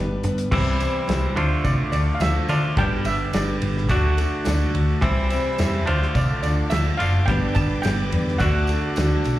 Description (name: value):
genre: folk rock and heartland rock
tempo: 106 BPM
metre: 4/4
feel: straight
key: unclear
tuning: A4 = 442 Hz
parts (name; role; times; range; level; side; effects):
- dark upright piano; accompaniment; 0.0-9.4 s; C4 to F5; -35 LUFS; right 3 dB; none
- picked steel-string acoustic guitar; accompaniment; 0.0-9.4 s; G2 to C5; -28 LUFS; left 4 dB; none
- clear symphonic string section; sustained chords; 0.0-0.5, 5.0-9.4 s; A4 to E6; -38 LUFS; left 1 dB; none
- clean electric guitar; riff; 0.0-9.4 s; G2 to G4; -26 LUFS; right 2 dB; slapback echo
- hollow-body short-scale picked electric bass; bass; 0.0-9.4 s; F#1 to D3; -22 LUFS; equal; none
- damped 70s drum kit; drums; 0.2-9.4 s; crash cymbal, hi-hat, kick drum, ride cymbal, snare drum; -27 LUFS; equal; none
- tambourine; percussion; 0.8-9.4 s; none; -43 LUFS; right 1 dB; none
- steel pan; melody; 1.4-9.2 s; C5 to A5; -29 LUFS; right 2 dB; slapback echo
room: studio reverb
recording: live gig heard through the venue's PA, club reverb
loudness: -19 LUFS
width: side -14 dB against mid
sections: 0.5-9.4 A section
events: upright piano fill 0.0-0.5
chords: 0.0 G; 0.5 C; 1.4 Dm; 2.8 G; 3.9 D; 5.0 C; 5.9 Dm; 7.3 G; 8.4 D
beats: | 0.52 1.08 1.65 2.21 | 2.77 3.33 3.90 4.46 | 5.02 5.59 6.15 6.71 | 7.28 7.84 8.41 8.97